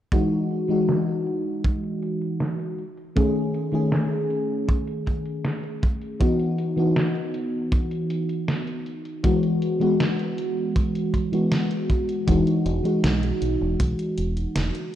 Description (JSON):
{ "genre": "vaporwave", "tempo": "79 BPM", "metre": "4/4", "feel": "straight", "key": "E major", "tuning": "A4 = 440 Hz", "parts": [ { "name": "mellow FM electric piano", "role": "accompaniment", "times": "0.1-15.0 s", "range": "D#3 to G#4", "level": "-23 LUFS", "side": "equal", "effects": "analog chorus, tape echo" }, { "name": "detuned 8-bit digital drum machine", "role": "drums", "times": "0.1-14.9 s", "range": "hi-hat, snare drum", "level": "-28 LUFS", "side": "equal", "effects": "low-pass filter on hats, low-pass filter on snare, low-pass filter on room" }, { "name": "kick drum", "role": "drums", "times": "0.1-14.0 s", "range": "none", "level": "-22 LUFS", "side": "right 1 dB", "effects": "none" }, { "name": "deep dub fingered electric bass", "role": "bass", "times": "12.3-14.7 s", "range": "E1 to B1", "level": "-26 LUFS", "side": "equal", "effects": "none" } ], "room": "moderate lush hall reverb, RT60 2.4 s", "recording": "rough home demo mix", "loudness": "-21 LUFS", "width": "side -11 dB against mid", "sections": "0.1-15.0 A section", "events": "filter sweep on drum 0.1-15.0", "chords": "0.1 Emaj9; 2.8 Amaj7#11/D#; 6.2 Badd11/E; 9.2 F#9sus4; 12.3 Emaj9" }